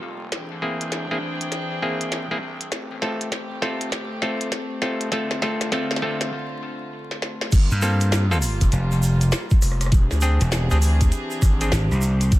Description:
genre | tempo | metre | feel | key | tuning
glitch hop | 100 BPM | 4/4 | swing 63% on 16ths | G minor | A4 = 439 Hz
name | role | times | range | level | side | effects
dark chamber string section | sustained chords | 0.0-12.4 s | D3 to G5 | -30 LUFS | equal | sidechain pumping, low-pass filter
gritty driven synth bass | bass | 0.0-12.4 s | E1 to D2 | -26 LUFS | equal | overdrive, high-pass filter
glitchy drum kit | drums | 0.3-12.4 s | crash cymbal, hi-hat, rim click, snare drum | -28 LUFS | equal | high-pass filter on hats, high-pass filter on snare, high-pass filter on cymbals, high-pass filter on room
clav | stabs | 0.6-11.7 s | A3 to A4 | -27 LUFS | left 1 dB | sidechain pumping, ping-pong delay
electronic kick drum | drums | 7.5-12.4 s | none | -17 LUFS | equal | overdrive
egg shaker | percussion | 7.5-12.4 s | none | -35 LUFS | right 4 dB | none
gritty slap bass | bass | 7.7-12.3 s | E1 to G2 | -19 LUFS | equal | overdrive
room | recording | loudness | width
little or no reverb | vinyl crackle | -20 LUFS | side -17 dB against mid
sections
0.0-7.5 A section; 7.5-12.4 B section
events
build-up 0.0-7.5; drum fill 0.0-6.3, 7.1-7.5; filter sweep on string section 0.0-7.5; break 6.3-7.5; drop 7.5-12.4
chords
0.3 E7alt; 2.7 G9sus4; 5.1 Dm7; 7.5 Gm11; 9.9 E7alt

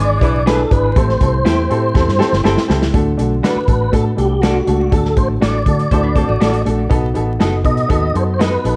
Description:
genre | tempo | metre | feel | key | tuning
uptempo 1960s-style soul | 121 BPM | 4/4 | straight | D mixolydian | A4 = 440 Hz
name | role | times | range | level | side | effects
mellow tonewheel organ | melody | 0.0-8.8 s | F#4 to D#5 | -22 LUFS | equal | chorus vibrato, fast rotary speaker, tape echo
warm upright piano | accompaniment | 0.0-8.8 s | A2 to B4 | -22 LUFS | equal | none
vintage muted fingered electric bass | bass | 0.0-8.8 s | F#1 to D3 | -21 LUFS | equal | none
natural country drum kit | drums | 0.2-8.8 s | hi-hat, kick drum, snare drum | -20 LUFS | equal | none
electric guitar through a small old amp | stabs | 0.5-8.5 s | D4 to D#5 | -28 LUFS | equal | subtle chorus, tape echo
archtop guitar, miked and amplified | riff | 5.9-6.9 s | A3 to C5 | -28 LUFS | equal | none
room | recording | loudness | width
light reverb, small room ambience | vinyl crackle | -15 LUFS | mono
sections
0.0-2.9 A section; 2.9-8.8 B section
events
drum fill 2.0-2.9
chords
0.0 E7; 1.0 Am7; 2.9 D; 6.9 B7

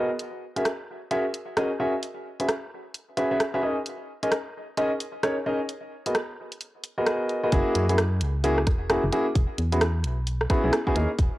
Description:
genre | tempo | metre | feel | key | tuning
UK garage, two-step garage | 131 BPM | 4/4 | swing 62% on 16ths | unclear | A4 = 441 Hz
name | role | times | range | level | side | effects
warm grand piano | stabs | 0.0-11.1 s | A#3 to E5 | -26 LUFS | equal | low-pass filter, cassette tape, tape echo
garage drum kit | drums | 0.2-11.3 s | hi-hat, rim click | -28 LUFS | equal | none
organ-like FM bass | bass | 7.5-11.3 s | D#1 to F#2 | -26 LUFS | equal | none
electronic kick drum | drums | 7.5-11.3 s | none | -24 LUFS | equal | none
room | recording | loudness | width
moderate spring reverb, RT60 1.2 s | home recording on cassette | -23 LUFS | side -17 dB against mid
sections
0.0-7.5 A section; 7.5-11.4 B section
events
drop 7.5-11.4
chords
0.2 F#9; 2.0 E69; 3.6 D#7sus4; 5.7 G#m9; 7.5 F#9; 9.4 E69

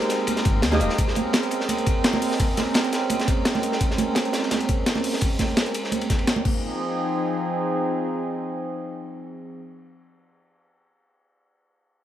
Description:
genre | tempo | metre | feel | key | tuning
liquid drum and bass | 170 BPM | 4/4 | straight | F minor | A4 = 435 Hz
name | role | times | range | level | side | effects
archtop guitar, miked and amplified | accompaniment | 0.0-1.0 s | Bb3 to Eb5 | -28 LUFS | equal | tape echo
warm analog pad | sustained chords | 0.0-9.6 s | F3 to G5 | -26 LUFS | right 2 dB | chorus, sidechain pumping
breakbeat sampler-style drum kit | drums | 0.0-6.5 s | crash cymbal, hi-hat, snare drum | -25 LUFS | equal | small room reverb
crunchy breakbeat drum kit | drums | 0.1-6.3 s | hi-hat, ride cymbal, snare drum | -30 LUFS | equal | high-pass filter on cymbals, small room reverb, high-pass filter on hats, high-pass filter on snare, high-pass filter on room
congas | percussion | 0.3-6.4 s | none | -30 LUFS | right 2 dB | none
sub bass with octave | bass | 0.5-0.9 s | Eb1 to Eb2 | -23 LUFS | equal | none
electronic kick drum | drums | 0.5-6.5 s | none | -24 LUFS | equal | small room reverb
room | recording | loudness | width
light reverb, small room ambience | none | -21 LUFS | side -11 dB against mid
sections
0.0-6.6 A section; 6.6-9.5 B section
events
none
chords
0.0 Abmaj9; 1.0 Bbm9; 6.5 Fm7

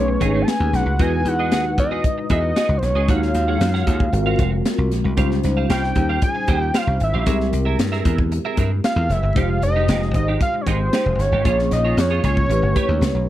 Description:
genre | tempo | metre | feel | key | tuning
polished 1980s jazz-funk pop | 115 BPM | 4/4 | straight | unclear | A4 = 438 Hz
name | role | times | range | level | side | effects
fat analog lead | melody | 0.0-13.3 s | C5 to A5 | -23 LUFS | equal | slapback echo
mellow tine electric piano | accompaniment | 0.0-13.3 s | G3 to Db5 | -25 LUFS | left 1 dB | medium stereo tremolo, ensemble chorus
dry thumbed slap bass | bass | 0.0-13.3 s | F1 to G2 | -20 LUFS | equal | none
clean electric guitar | riff | 0.1-13.2 s | Ab3 to G5 | -28 LUFS | right 6 dB | ensemble chorus
crisp fusion drum kit | drums | 0.2-13.1 s | hi-hat, kick drum, snare drum | -23 LUFS | equal | none
room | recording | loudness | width
small room ambience | none | -17 LUFS | side -13 dB against mid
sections
0.0-13.3 A section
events
none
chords
0.0 B13; 1.0 Emaj9; 3.1 Ebm11; 4.1 Ab13; 5.2 Dbmaj9#11; 7.3 C7b13; 9.4 Fm9; 11.5 Bbm7; 12.5 A9

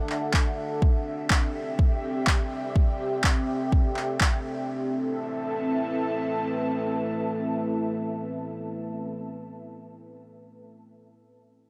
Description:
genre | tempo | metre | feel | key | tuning
melodic techno | 124 BPM | 4/4 | straight | A dorian | A4 = 440 Hz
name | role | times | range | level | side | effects
deep dark ambient pad | sustained chords | 0.0-9.2 s | A3 to F#5 | -36 LUFS | equal | chorus, built-in reverb, sidechain pumping
airy breathy pad | texture | 0.0-9.3 s | C4 to A5 | -33 LUFS | equal | chorus, sidechain pumping
electronic handclaps | drums | 0.1-4.3 s | none | -30 LUFS | equal | none
electronic kick drum | drums | 0.3-4.3 s | none | -25 LUFS | equal | none
room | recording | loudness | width
light reverb, digital ambience | none | -27 LUFS | mono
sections
0.0-4.7 A section; 4.7-8.6 B section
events
none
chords
0.0 Dadd9; 0.8 C; 4.7 Am

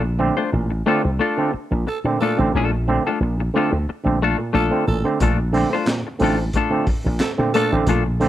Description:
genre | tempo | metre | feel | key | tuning
funk | 90 BPM | 4/4 | straight | unclear | A4 = 440 Hz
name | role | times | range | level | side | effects
semi-hollow electric guitar | accompaniment | 0.0-8.3 s | A3 to C5 | -22 LUFS | left 5 dB | wide subtle chorus, plate reverb
mellow clav | stabs | 0.0-8.3 s | Bb2 to C4 | -22 LUFS | right 3 dB | auto-wah, plate reverb
slap bass with an envelope filter | bass | 0.0-8.3 s | A1 to Bb2 | -21 LUFS | equal | none
growling tenor saxophone | second line | 1.9-7.8 s | A4 | -26 LUFS | right 4 dB | plate reverb
crunchy breakbeat drum kit | drums | 5.2-8.3 s | handclaps, hi-hat, kick drum, snare drum | -24 LUFS | equal | none
room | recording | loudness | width
light reverb | rough home demo mix | -17 LUFS | side -13 dB against mid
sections
0.0-8.3 A section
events
none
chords
0.0 Bbmaj7

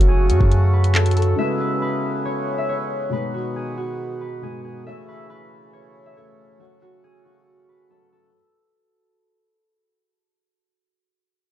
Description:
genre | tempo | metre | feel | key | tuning
hip hop, drill | 138 BPM | 4/4 | half-time | unclear | A4 = 440 Hz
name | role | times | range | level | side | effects
concert harp | melody | 0.0-10.3 s | F#4 to E5 | -26 LUFS | right 1 dB | tape echo
felt-muted upright piano | accompaniment | 0.0-8.4 s | B2 to E5 | -30 LUFS | left 3 dB | none
hand-pumped harmonium | sustained chords | 0.0-8.3 s | C#3 to F#4 | -32 LUFS | right 1 dB | none
long sustained 808-style bass | bass | 0.0-1.3 s | F#1 to F#2 | -16 LUFS | equal | none
drill drum kit | drums | 0.0-1.3 s | handclaps, hi-hat, kick drum | -18 LUFS | equal | overdrive, vintage 12-bit sampler grit
room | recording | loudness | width
small room reverb | dark, warm production | -18 LUFS | side -12 dB against mid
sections
0.0-8.3 A section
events
fade-out 0.0-8.3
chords
0.0 F#m; 1.4 C#m7; 3.1 B6; 4.9 A; 6.6 F#m

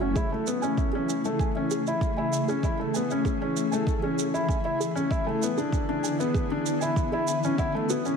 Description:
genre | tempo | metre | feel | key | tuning
piano and strings electronica | 97 BPM | 4/4 | straight | A major | A4 = 441 Hz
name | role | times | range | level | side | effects
granular cloud pad | sustained chords | 0.0-8.2 s | C#3 to G#4 | -30 LUFS | left 1 dB | built-in reverb, sidechain pumping, shimmer reverb
soft round pluck | arpeggios | 0.0-8.0 s | F#4 to G#5 | -36 LUFS | right 2 dB | wide subtle chorus, sidechain pumping, ping-pong delay, shimmer reverb
felt-muted upright piano | riff | 0.0-8.2 s | A3 to E4 | -28 LUFS | left 2 dB | ping-pong delay, shimmer reverb
electronic kick drum | drums | 0.2-7.7 s | none | -28 LUFS | right 1 dB | none
shaker | drums | 0.2-8.2 s | none | -38 LUFS | right 12 dB | none
room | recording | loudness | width
moderate echo chamber reverb, RT60 2.4 s | none | -24 LUFS | side -6 dB against mid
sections
0.2-8.2 A section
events
build-up 0.2-8.2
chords
0.2 Amaj7; 5.1 E7; 7.6 F#m7

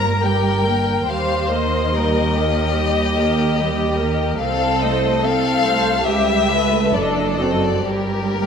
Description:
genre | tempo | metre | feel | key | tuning
classical, slow romantic movement for string orchestra | 60-74 BPM | 4/4 | rubato | unclear | A4 = 440 Hz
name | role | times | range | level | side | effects
warm chamber violin section | melody | 0.0-8.5 s | Bb4 to Bb5 | -21 LUFS | left 7 dB | none
rich studio violin section | second line | 0.0-8.5 s | G4 to C5 | -23 LUFS | left 1 dB | none
rich chamber viola section | accompaniment | 0.0-8.5 s | G3 to C5 | -22 LUFS | right 2 dB | none
clear studio cello section | bass | 0.0-8.5 s | C2 to G2 | -24 LUFS | right 3 dB | none
rich symphonic double bass section | bass | 0.0-8.5 s | F#1 to Eb2 | -25 LUFS | right 2 dB | none
room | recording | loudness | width
moderate scoring stage reverb, RT60 1.9 s | none | -16 LUFS | side -7 dB against mid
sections
0.0-8.5 A section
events
none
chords
0.0 Gm; 1.1 Eb; 4.4 F7/C; 6.1 A7/C#; 6.9 D7/F#; 7.9 Gm

